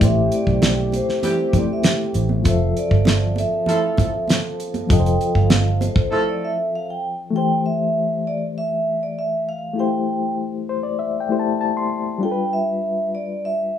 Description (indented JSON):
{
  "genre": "lush 1970s-style soul",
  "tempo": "98 BPM",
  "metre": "4/4",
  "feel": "straight",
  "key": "A minor",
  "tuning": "A4 = 441 Hz",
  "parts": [
    { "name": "vibraphone with medium hard mallets", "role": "melody", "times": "0.0-13.8 s", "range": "C5 to G5", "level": "-23 LUFS", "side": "right 1 dB", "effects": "slapback echo" },
    { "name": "bright reed electric piano", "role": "accompaniment", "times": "0.0-13.8 s", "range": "E3 to C6", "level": "-24 LUFS", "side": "left 6 dB", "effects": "fast tremolo" },
    { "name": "mellow French horn section", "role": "sustained chords", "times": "0.0-7.3 s", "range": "F3 to A4", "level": "-28 LUFS", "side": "right 3 dB", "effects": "none" },
    { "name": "vintage muted fingered electric bass", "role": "bass", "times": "0.0-5.9 s", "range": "F1 to B1", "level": "-19 LUFS", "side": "right 1 dB", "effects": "none" },
    { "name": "damped 70s drum kit", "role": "drums", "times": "0.0-6.1 s", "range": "hi-hat, kick drum, snare drum", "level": "-19 LUFS", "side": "equal", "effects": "none" },
    { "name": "congas", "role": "percussion", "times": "0.0-6.0 s", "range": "none", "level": "-27 LUFS", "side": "right 6 dB", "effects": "none" },
    { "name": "mellow horn section", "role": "stabs", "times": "1.2-6.5 s", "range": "E3 to A4", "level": "-23 LUFS", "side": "right 2 dB", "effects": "none" }
  ],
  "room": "light reverb",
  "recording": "rough home demo mix, small room ambience",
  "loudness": "-18 LUFS",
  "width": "side -9 dB against mid",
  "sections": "0.0-7.3 A section; 7.3-13.8 B section",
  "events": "vibraphone solo 0.0-7.3; break 6.1-7.3; reed electric piano fill 10.4-12.2",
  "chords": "0.0 Am7; 2.5 Fmaj7; 7.3 Am7; 12.2 G7"
}